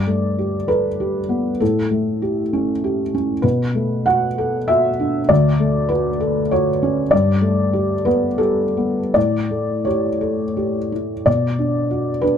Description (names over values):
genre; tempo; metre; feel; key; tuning
neoclassical minimalist piano; 78-102 BPM; 3/4; rubato; B minor; A4 = 437 Hz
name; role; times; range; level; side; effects
felt-muted upright piano; solo; 0.0-12.4 s; D2 to F#5; -16 LUFS; equal; none
room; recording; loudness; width
little or no reverb; close, detailed microphones, faint mains hum; -16 LUFS; side -8 dB against mid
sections
0.0-11.3 A section; 11.3-12.4 A section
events
none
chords
0.0 Gadd9; 1.6 A7; 3.4 Bm7; 5.3 Dmaj7; 7.1 Gadd9; 9.2 A7; 11.3 Bm